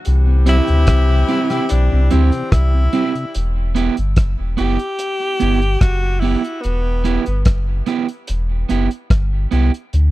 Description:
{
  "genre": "roots reggae",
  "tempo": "73 BPM",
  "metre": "4/4",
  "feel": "straight",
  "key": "E minor",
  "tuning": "A4 = 439 Hz",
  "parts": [
    { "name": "cloth-damped thuddy drum kit", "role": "drums", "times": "0.0-10.1 s", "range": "hi-hat, kick drum, rim click", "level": "-15 LUFS", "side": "equal", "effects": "none" },
    { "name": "warm horn section", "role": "second line", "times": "0.1-2.9 s", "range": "E3 to G4", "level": "-24 LUFS", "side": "left 6 dB", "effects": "dub echo" },
    { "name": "warm sub bass", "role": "bass", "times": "0.1-10.1 s", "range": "E1 to D2", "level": "-15 LUFS", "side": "equal", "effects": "none" },
    { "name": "mellow tonewheel organ", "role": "accompaniment", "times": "0.3-3.3 s", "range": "C3 to E4", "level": "-25 LUFS", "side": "left 2 dB", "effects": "overdrive, chorus vibrato, slow rotary speaker" },
    { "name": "bright tenor saxophone", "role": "melody", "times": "0.5-7.4 s", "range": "B3 to G4", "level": "-24 LUFS", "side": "left 1 dB", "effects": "dub echo" },
    { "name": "electric guitar at the edge of break-up", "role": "accompaniment", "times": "0.5-9.7 s", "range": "B3 to G4", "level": "-22 LUFS", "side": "right 8 dB", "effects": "dub echo" }
  ],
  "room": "little or no reverb",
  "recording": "dry, close 1970s-style studio recording",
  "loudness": "-14 LUFS",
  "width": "side -17 dB against mid",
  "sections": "0.0-3.3 A section; 3.3-10.1 B section",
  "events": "tenor saxophone solo 0.0-3.3",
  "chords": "0.1 C; 3.3 Em"
}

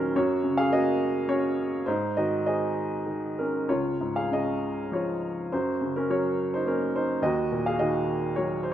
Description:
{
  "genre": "classical, lyrical solo piano",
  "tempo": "96-107 BPM",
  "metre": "3/4",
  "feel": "rubato",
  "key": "unclear",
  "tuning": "A4 = 438 Hz",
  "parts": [
    { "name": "warm upright piano", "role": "solo", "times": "0.0-8.7 s", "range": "Db2 to F5", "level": "-24 LUFS", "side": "equal", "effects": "none" }
  ],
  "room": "moderate recital hall reverb, RT60 1.6 s",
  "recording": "nothing above 7.8 kHz",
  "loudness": "-24 LUFS",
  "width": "side -11 dB against mid",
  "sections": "0.0-8.7 A section",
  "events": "none",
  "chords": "0.2 Gb6; 1.9 Ab; 3.7 Dbadd9; 5.5 Gb; 7.2 Ebm"
}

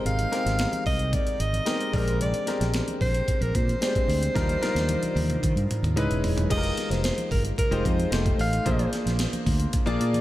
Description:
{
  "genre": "polished 1980s jazz-funk pop",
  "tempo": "112 BPM",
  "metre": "4/4",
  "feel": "straight",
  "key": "unclear",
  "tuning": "A4 = 440 Hz",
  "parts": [
    { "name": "breathy alto saxophone", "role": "melody", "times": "0.0-8.9 s", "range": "Bb4 to F5", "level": "-30 LUFS", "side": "right 1 dB", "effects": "none" },
    { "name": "clear baby grand piano", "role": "accompaniment", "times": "0.0-10.2 s", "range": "G3 to D5", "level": "-29 LUFS", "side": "left 2 dB", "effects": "analog chorus" },
    { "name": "fretless electric bass", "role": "bass", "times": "0.0-10.2 s", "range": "Eb1 to Eb3", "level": "-26 LUFS", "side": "equal", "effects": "none" },
    { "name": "breakbeat sampler-style drum kit", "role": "drums", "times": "0.1-10.2 s", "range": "crash cymbal, hi-hat, kick drum, snare drum, toms", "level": "-28 LUFS", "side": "equal", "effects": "none" },
    { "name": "congas", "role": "percussion", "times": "0.1-10.2 s", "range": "none", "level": "-39 LUFS", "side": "right 2 dB", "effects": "none" }
  ],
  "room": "moderate plate reverb, RT60 2.6 s",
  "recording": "dreamy mix soaked in reverb",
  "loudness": "-22 LUFS",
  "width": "side -15 dB against mid",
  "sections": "0.0-6.5 A section; 6.5-10.2 B section",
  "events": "drum fill 4.4-6.5; grand piano fill 10.0",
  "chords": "0.0 Abmaj9; 1.9 Bb13; 4.4 Ebmaj9; 6.0 Dbm9; 6.5 Fm11; 8.1 F9; 8.7 Bb9"
}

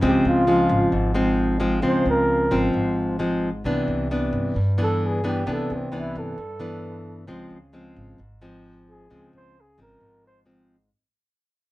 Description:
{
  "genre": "bossa nova",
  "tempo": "132 BPM",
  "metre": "4/4",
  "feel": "straight",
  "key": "unclear",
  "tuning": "A4 = 440 Hz",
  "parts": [
    { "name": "nylon-string guitar", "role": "accompaniment", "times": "0.0-10.9 s", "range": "G2 to D4", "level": "-22 LUFS", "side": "equal", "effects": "none" },
    { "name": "upright bass", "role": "bass", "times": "0.0-10.9 s", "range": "Ab1 to G2", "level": "-28 LUFS", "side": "equal", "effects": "none" },
    { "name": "mellow flugelhorn", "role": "melody", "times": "0.1-10.4 s", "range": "C4 to C5", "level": "-24 LUFS", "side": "equal", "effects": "none" }
  ],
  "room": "wet studio reverb, RT60 0.5 s",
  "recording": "heard from further back in the room",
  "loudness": "-20 LUFS",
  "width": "side -18 dB against mid",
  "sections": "0.0-10.9 A section",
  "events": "fade-out 0.0-10.9; flugelhorn solo 0.0-10.9",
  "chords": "0.0 Dbmaj7; 3.7 Cmaj9; 7.3 Dbmaj7"
}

